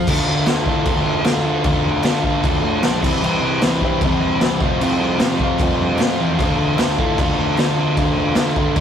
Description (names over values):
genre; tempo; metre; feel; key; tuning
garage rock duo or trio; 152 BPM; 4/4; straight; D minor; A4 = 440 Hz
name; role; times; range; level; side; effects
crunchy overdriven guitar; riff; 0.0-8.8 s; C3 to F4; -18 LUFS; left 1 dB; none
fuzz picked electric bass; bass; 0.0-8.8 s; Bb1 to D3; -24 LUFS; equal; overdrive
raw garage drum kit; drums; 0.1-8.8 s; crash cymbal, kick drum, snare drum; -20 LUFS; equal; none
group handclap; percussion; 0.5-8.5 s; none; -34 LUFS; right 1 dB; none
room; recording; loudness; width
moderate studio reverb, RT60 0.5 s; rough rehearsal-room recording, tube saturation; -15 LUFS; side -8 dB against mid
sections
0.1-8.8 A section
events
none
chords
0.1 Dm; 3.0 C; 4.6 F/C; 6.4 Dm